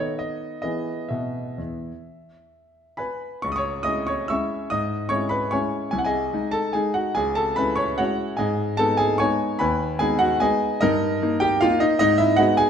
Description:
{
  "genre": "classical, piano waltz",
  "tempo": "125-156 BPM",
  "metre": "3/4",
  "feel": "rubato",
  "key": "E major, C# minor from 3.4 s",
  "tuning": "A4 = 440 Hz",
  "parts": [
    { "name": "clear grand piano", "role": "solo", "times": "0.0-12.7 s", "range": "B#1 to E6", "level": "-20 LUFS", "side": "equal", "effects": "none" }
  ],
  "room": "moderate recital hall reverb, RT60 1.3 s",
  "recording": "none",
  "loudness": "-20 LUFS",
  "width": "side -8 dB against mid",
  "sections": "0.0-3.4 A section; 3.4-12.7 B section",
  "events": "none",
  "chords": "0.0 B7; 0.6 E; 3.4 C#m; 5.9 G#/B#; 7.2 C#m; 8.4 G#m; 10.8 D#/G; 12.0 G#m"
}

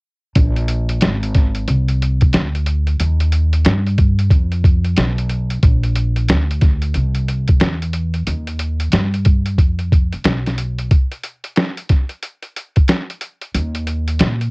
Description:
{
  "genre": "hip hop, jazz-hop",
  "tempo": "91 BPM",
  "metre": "4/4",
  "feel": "swing 64% on 16ths",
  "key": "Eb major",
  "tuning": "A4 = 440 Hz",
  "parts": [
    { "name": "upright bass", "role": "bass", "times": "0.4-14.5 s", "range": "Ab1 to Bb2", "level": "-17 LUFS", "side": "equal", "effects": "none" },
    { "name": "lo-fi sampler-style drum kit", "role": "drums", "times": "0.4-14.5 s", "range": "hi-hat, kick drum, snare drum", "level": "-15 LUFS", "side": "equal", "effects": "cassette tape" }
  ],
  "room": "little or no reverb",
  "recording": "home recording on cassette",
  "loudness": "-14 LUFS",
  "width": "side -32 dB against mid",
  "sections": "0.4-14.5 A section",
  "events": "none",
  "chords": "none"
}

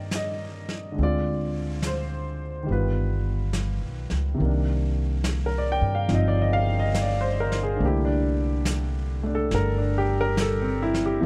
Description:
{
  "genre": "jazz ballad",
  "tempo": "70 BPM",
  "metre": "4/4",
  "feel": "swing 66% on 8ths",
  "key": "C minor",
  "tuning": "A4 = 439 Hz",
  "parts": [
    { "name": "clear upright piano", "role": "accompaniment", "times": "0.0-11.3 s", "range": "C3 to G5", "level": "-28 LUFS", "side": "equal", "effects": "none" },
    { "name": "upright bass", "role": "bass", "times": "0.0-11.3 s", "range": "G1 to G2", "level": "-28 LUFS", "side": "equal", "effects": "none" },
    { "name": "vintage brush drum kit", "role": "drums", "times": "0.1-11.3 s", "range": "brushed snare drum, hi-hat, snare drum", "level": "-36 LUFS", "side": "equal", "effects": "none" }
  ],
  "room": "little or no reverb",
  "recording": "close, detailed microphones",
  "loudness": "-25 LUFS",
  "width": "mono",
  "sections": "0.0-4.4 A section; 4.4-11.3 B section",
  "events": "none",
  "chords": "0.0 Cm9; 1.0 Dm7b5; 2.7 G7b13; 4.4 Cm9; 7.8 C13"
}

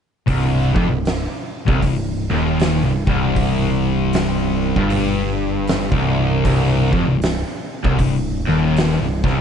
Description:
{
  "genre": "stoner and doom metal",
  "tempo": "78 BPM",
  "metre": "4/4",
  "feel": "swing 62% on 8ths",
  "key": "C minor",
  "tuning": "A4 = 440 Hz",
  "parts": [
    { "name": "raw garage guitar", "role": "riff", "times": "0.3-9.4 s", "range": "C2 to G2", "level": "-23 LUFS", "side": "equal", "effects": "overdrive" },
    { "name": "thick fuzz guitar", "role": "riff", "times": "0.3-9.4 s", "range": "C2 to G2", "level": "-21 LUFS", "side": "left 8 dB", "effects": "distortion" },
    { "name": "thick fuzz guitar", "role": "riff", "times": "0.3-9.4 s", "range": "C2 to G2", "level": "-23 LUFS", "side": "right 8 dB", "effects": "distortion" },
    { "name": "growling picked electric bass", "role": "bass", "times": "0.3-9.4 s", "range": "C1 to G1", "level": "-24 LUFS", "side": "right 1 dB", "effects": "overdrive" },
    { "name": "oversized low-tuned drum kit", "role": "drums", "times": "0.3-9.4 s", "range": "hi-hat, kick drum, snare drum", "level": "-22 LUFS", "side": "right 1 dB", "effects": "none" }
  ],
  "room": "light reverb",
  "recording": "dark, warm production, nothing above 11.0 kHz",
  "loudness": "-16 LUFS",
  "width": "side -8 dB against mid",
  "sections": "0.3-9.4 A section",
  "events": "none",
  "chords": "0.3 Cm"
}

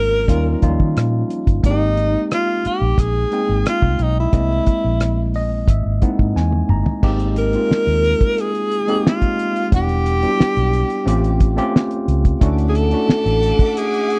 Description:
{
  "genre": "lush 1970s-style soul",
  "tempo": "89 BPM",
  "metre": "4/4",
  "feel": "straight",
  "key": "unclear",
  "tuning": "A4 = 439 Hz",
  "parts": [
    { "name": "breathy tenor saxophone", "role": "melody", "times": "0.0-14.2 s", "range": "Eb4 to Bb4", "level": "-22 LUFS", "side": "equal", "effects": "slapback echo" },
    { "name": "tine electric piano", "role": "accompaniment", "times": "0.0-14.2 s", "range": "F3 to Bb5", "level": "-24 LUFS", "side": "equal", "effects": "overdrive" },
    { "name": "vintage muted fingered electric bass", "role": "bass", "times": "0.0-13.5 s", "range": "E1 to Eb3", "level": "-21 LUFS", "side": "equal", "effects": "none" },
    { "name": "cloth-damped thuddy drum kit", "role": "drums", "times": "0.3-14.2 s", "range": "crash cymbal, hi-hat, kick drum, rim click, snare drum, toms", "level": "-18 LUFS", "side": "equal", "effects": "vintage 12-bit sampler grit" },
    { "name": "warm studio string section", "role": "sustained chords", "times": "12.4-14.2 s", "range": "E5 to D6", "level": "-33 LUFS", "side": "equal", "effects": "none" }
  ],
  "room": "little or no reverb",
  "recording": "dry, close 1970s-style studio recording",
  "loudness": "-18 LUFS",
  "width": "mono",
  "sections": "0.0-7.0 A section; 7.0-14.2 B section",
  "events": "tine electric piano fill 5.0-7.0; drum fill 6.4-7.0",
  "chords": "0.3 Eb7; 1.6 Abmaj7; 4.3 C7alt; 7.0 Abmaj9; 9.7 Em7; 11.1 A7alt; 12.4 Dmaj9"
}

